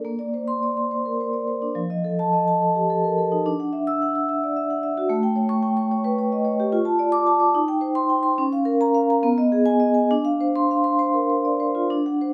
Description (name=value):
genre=classical, contemporary piece for solo vibraphone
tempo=63-74 BPM (dotted quarters)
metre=6/8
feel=rubato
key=unclear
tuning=A4 = 439 Hz
part: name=vibraphone with medium mallets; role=solo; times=0.0-12.3 s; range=F3 to E6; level=-22 LUFS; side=equal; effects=none
room=moderate recital hall reverb, RT60 1.4 s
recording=close, detailed microphones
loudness=-22 LUFS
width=mono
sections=0.1-12.3 A section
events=none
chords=0.1 Bbadd9; 1.8 F9; 3.4 Dadd9; 5.1 A9; 6.7 F6; 7.6 Eb6; 8.4 C#6; 9.2 B6; 10.1 Dm7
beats=| 0.06 0.92 | 1.77 2.61 | 3.45 4.28 | 5.10 5.91 | 6.74 7.56 | 8.40 9.25 | 10.11 10.99 | 11.91